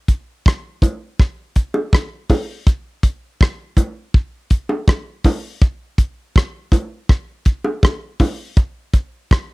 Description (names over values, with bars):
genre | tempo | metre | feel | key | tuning
reggae | 81 BPM | 4/4 | straight | none | none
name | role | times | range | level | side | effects
damped 70s drum kit | drums | 0.1-9.5 s | hi-hat, kick drum, rim click | -12 LUFS | equal | none
bongos | percussion | 0.8-8.4 s | none | -20 LUFS | right 1 dB | none
room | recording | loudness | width
little or no reverb | dry, close 1970s-style studio recording | -16 LUFS | side -24 dB against mid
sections
0.0-9.5 A section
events
none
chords
none